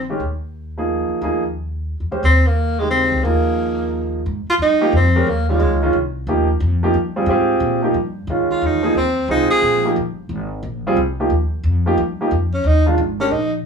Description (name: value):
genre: modal jazz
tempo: 179 BPM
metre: 3/4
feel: swing 63% on 8ths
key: Ab major from 4.3 s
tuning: A4 = 439 Hz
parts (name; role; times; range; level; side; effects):
- breathy tenor saxophone; melody; 0.0-0.1, 2.2-5.9, 8.5-9.9, 12.5-13.5 s; Ab3 to Ab4; -18 LUFS; right 1 dB; none
- upright bass; bass; 0.0-13.6 s; G1 to Bb2; -20 LUFS; left 1 dB; none
- warm grand piano; accompaniment; 0.1-13.3 s; Db3 to C5; -19 LUFS; right 2 dB; none
room: moderate studio reverb, RT60 0.6 s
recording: band playing live in one room, small room ambience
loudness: -16 LUFS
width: side -6 dB against mid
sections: 0.0-4.3 A section; 4.3-12.3 B section; 12.3-13.7 C section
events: tenor saxophone solo 12.3-13.7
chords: 0.2 Eb9sus4; 4.3 Abmaj9; 12.3 Bb7sus4